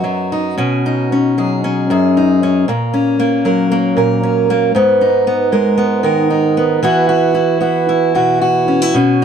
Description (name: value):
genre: folk, solo fingerstyle acoustic guitar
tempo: 114 BPM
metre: 4/4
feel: rubato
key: B major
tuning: A4 = 440 Hz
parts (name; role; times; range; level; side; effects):
- fingerpicked steel-string acoustic guitar; solo; 0.0-9.2 s; F#2 to A#4; -12 LUFS; equal; none
room: light reverb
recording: dark, warm production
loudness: -12 LUFS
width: side -7 dB against mid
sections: 0.6-9.2 A section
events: none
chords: 0.0 B; 0.6 Badd9; 2.7 F#/A#; 4.7 G#madd9; 6.8 Esus2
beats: 0.03 | 0.57 1.10 1.63 2.15 | 2.67 3.18 3.70 4.22 | 4.74 5.25 5.77 6.29 | 6.81 7.34 7.87 8.41 | 8.94